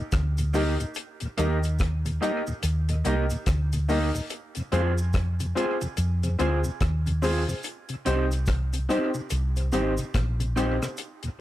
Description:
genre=roots reggae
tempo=72 BPM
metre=4/4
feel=swing 61% on 16ths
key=unclear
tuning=A4 = 439 Hz
part: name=mellow tonewheel organ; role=accompaniment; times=0.0-11.3 s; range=Eb2 to F4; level=-32 LUFS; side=left 1 dB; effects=slow rotary speaker, tube saturation
part: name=hollow-body short-scale fingered electric bass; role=bass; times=0.1-10.8 s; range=Ab1 to F2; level=-25 LUFS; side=equal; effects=none
part: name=deep reggae drum kit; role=drums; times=0.1-11.4 s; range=hi-hat, kick drum, rim click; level=-30 LUFS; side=equal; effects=none
part: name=cabasa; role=percussion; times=0.1-11.4 s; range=none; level=-44 LUFS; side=right 3 dB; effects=none
part: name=electric guitar through a small old amp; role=accompaniment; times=0.5-10.8 s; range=Bb3 to Ab4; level=-33 LUFS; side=right 7 dB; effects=spring reverb, dub echo
part: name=clear upright piano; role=stabs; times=0.5-10.9 s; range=C4 to Eb5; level=-29 LUFS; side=left 4 dB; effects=none
room=light reverb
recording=none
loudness=-24 LUFS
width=side -14 dB against mid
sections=0.0-11.4 A section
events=none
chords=0.0 Eb; 4.3 Fm; 7.6 Cm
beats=0.13 | 0.96 1.80 2.63 3.47 | 4.31 5.14 5.98 6.81 | 7.65 8.48 9.31 10.15 | 10.98

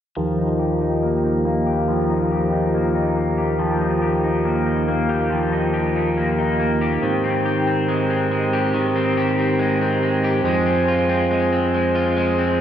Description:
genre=dream pop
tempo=70 BPM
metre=4/4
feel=straight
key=Eb major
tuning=A4 = 441 Hz
part: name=mellow tonewheel organ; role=sustained chords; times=0.2-12.6 s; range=Eb2 to C5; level=-20 LUFS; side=right 1 dB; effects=overdrive, chorus vibrato, stopped rotary speaker, low-pass filter
part: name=electric guitar at the edge of break-up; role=arpeggios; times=0.2-12.6 s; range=Eb3 to G4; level=-22 LUFS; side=left 2 dB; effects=lush chorus, low-pass filter, diffuse ambient delay
room=wet plate reverb, RT60 2.5 s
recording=dreamy mix soaked in reverb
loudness=-17 LUFS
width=side -9 dB against mid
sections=0.2-12.6 A section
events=filter sweep 0.2-12.6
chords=0.2 Ebadd9; 7.0 Abmaj7; 10.5 Fm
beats=| 0.17 1.03 1.88 2.74 | 3.60 4.46 5.31 6.17 | 7.03 7.88 8.74 9.60 | 10.46 11.31 12.17

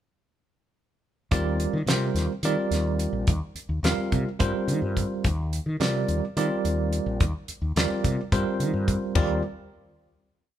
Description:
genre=electric jazz fusion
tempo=214 BPM (eighths)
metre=7/8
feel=straight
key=Eb major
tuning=A4 = 440 Hz
part: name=barky tine electric piano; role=accompaniment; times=1.3-9.4 s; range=G3 to F5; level=-27 LUFS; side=right 2 dB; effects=fast stereo tremolo
part: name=mellow fretless electric bass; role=bass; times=1.3-9.4 s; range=Bb1 to Eb3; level=-28 LUFS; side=left 1 dB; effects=none
part: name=damped 70s drum kit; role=drums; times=1.3-9.3 s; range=hi-hat, kick drum, ride cymbal, snare drum, toms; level=-25 LUFS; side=left 1 dB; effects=none
room=light reverb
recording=band playing live in one room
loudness=-23 LUFS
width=side -11 dB against mid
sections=1.3-9.2 groove; 9.2-10.6 final chord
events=none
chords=1.3 Ebmaj9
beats=| 1.32 1.60 1.88 2.16 2.44 2.72 3.00 | 3.28 3.56 3.84 4.12 4.40 4.68 4.96 | 5.25 5.53 5.80 6.09 6.37 6.64 6.92 | 7.20 7.48 7.76 8.04 8.32 8.60 8.88 | 9.16

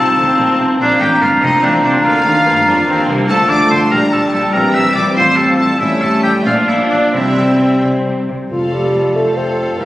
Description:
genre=quick classical-period movement for symphony orchestra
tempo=95 BPM (dotted quarters)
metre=6/8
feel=rubato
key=Bb major, F major from 3.3 s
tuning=A4 = 440 Hz
part: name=clear studio violin section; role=melody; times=0.0-9.8 s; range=D5 to E6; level=-26 LUFS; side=left 1 dB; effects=none
part: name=clear oboe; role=second line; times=0.0-7.8 s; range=D4 to E5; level=-15 LUFS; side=equal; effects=none
part: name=clear studio violin section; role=second line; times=0.0-9.8 s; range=C5 to E6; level=-27 LUFS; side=left 1 dB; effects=none
part: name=hollow large flute ensemble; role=second line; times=0.0-9.8 s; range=Bb4 to Bb5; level=-21 LUFS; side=equal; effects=none
part: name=mellow clarinet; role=second line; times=0.0-9.8 s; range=Bb3 to C5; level=-19 LUFS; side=equal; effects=none
part: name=clear studio viola section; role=accompaniment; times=0.0-9.8 s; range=G3 to A4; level=-21 LUFS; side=equal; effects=none
part: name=warm bassoon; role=accompaniment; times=0.0-9.8 s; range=E3 to C4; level=-24 LUFS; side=equal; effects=none
part: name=mellow French horn section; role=sustained chords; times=0.0-9.8 s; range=E3 to C5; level=-20 LUFS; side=equal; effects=none
part: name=rich studio cello section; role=bass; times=0.0-9.8 s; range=F2 to G3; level=-24 LUFS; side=right 1 dB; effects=none
part: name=rich studio double bass section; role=bass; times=0.0-9.8 s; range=F1 to G2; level=-24 LUFS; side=equal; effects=none
part: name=timpani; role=percussion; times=7.1-9.1 s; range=F2 to C3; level=-24 LUFS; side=equal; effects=none
room=wet scoring stage reverb, RT60 1.8 s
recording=recorded on a phone in the room, studio reverb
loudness=-11 LUFS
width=side -15 dB against mid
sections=0.0-8.5 A section; 8.5-9.8 B section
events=none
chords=0.0 F7; 0.8 Bb; 2.1 Bb/D; 3.3 Dm; 3.9 Gm/Bb; 4.5 C7; 5.2 F; 5.8 A7; 6.5 Bb; 7.1 C; 8.5 F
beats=0.18 | 0.81 1.43 | 2.05 2.67 | 3.30 3.92 | 4.55 5.18 | 5.81 6.47 | 7.15 7.83 | 8.52 9.15 | 9.79

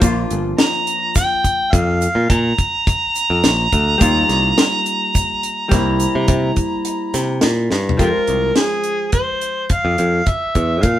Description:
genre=progressive instrumental, band music in an uneven meter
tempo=106 BPM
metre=7/4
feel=straight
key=F harmonic minor from 8.0 s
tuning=A4 = 439 Hz
part: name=vintage hollow-body jazz guitar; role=accompaniment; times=0.0-11.0 s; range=F3 to F4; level=-22 LUFS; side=left 1 dB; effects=none
part: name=modern bright picked electric bass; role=bass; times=0.0-11.0 s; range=G1 to C3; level=-18 LUFS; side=equal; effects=none
part: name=deep reggae drum kit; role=drums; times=0.0-11.0 s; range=hi-hat, kick drum, snare drum, toms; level=-18 LUFS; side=equal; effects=none
part: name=tube shaker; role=percussion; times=0.0-7.4 s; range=none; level=-30 LUFS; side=right 5 dB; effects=none
part: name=overdriven harmonica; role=melody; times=0.6-11.0 s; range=F4 to Bb5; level=-18 LUFS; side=equal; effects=none
room=moderate studio reverb, RT60 0.8 s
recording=band playing live in one room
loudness=-14 LUFS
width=side -12 dB against mid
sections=0.0-8.0 A section; 8.0-11.0 B section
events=drum fill 7.7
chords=0.0 Bb; 4.0 Ebadd9; 5.7 C7; 8.0 Fm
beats=| 0.03 0.60 1.17 1.74 2.31 2.88 3.44 | 4.01 4.58 5.15 5.72 6.29 6.86 7.42 | 7.99 8.56 9.13 9.70 10.27 10.84

